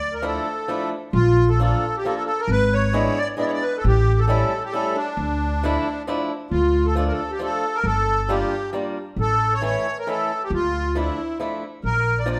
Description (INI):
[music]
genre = musette waltz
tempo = 134 BPM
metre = 3/4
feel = straight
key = D harmonic minor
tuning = A4 = 440 Hz
[part]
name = accordion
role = melody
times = 0.0-12.4 s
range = D4 to D5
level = -25 LUFS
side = equal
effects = light tremolo tuning
[part]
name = upright bass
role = bass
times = 0.0-12.4 s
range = G1 to D2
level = -24 LUFS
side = equal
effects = none
[part]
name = fingerpicked swing-style acoustic guitar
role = accompaniment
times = 0.2-12.4 s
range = E3 to F4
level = -29 LUFS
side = equal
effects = none
[sound]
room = wet stone room reverb, RT60 1.1 s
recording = band playing live in one room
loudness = -22 LUFS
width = mono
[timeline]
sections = 0.0-6.5 A section; 6.5-12.4 A section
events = none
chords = 0.0 Dmadd9; 1.1 Bb; 2.5 E7/G#; 3.8 A7; 5.2 Dmadd9; 6.5 Dm; 7.9 Gm7; 9.2 A; 10.5 Dmadd9; 11.8 Bb